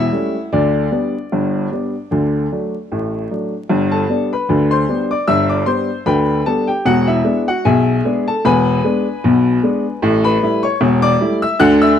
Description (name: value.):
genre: ragtime piano.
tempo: 76 BPM.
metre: 2/4.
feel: swing 55% on 16ths.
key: G major.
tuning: A4 = 440 Hz.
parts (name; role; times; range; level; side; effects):
clear baby grand piano; solo; 0.0-12.0 s; E1 to F#6; -14 LUFS; left 1 dB; none.
room: studio reverb.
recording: dry, close 1970s-style studio recording, vinyl crackle.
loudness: -14 LUFS.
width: side -9 dB against mid.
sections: 0.0-3.7 A section; 3.7-12.0 B section.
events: none.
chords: 0.0 A7; 0.5 G/D; 2.1 D; 3.7 G; 6.9 E7; 10.0 A7.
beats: | 0.53 1.32 | 2.11 2.91 | 3.70 4.49 | 5.28 6.07 | 6.86 7.65 | 8.44 9.22 | 10.01 10.80 | 11.58.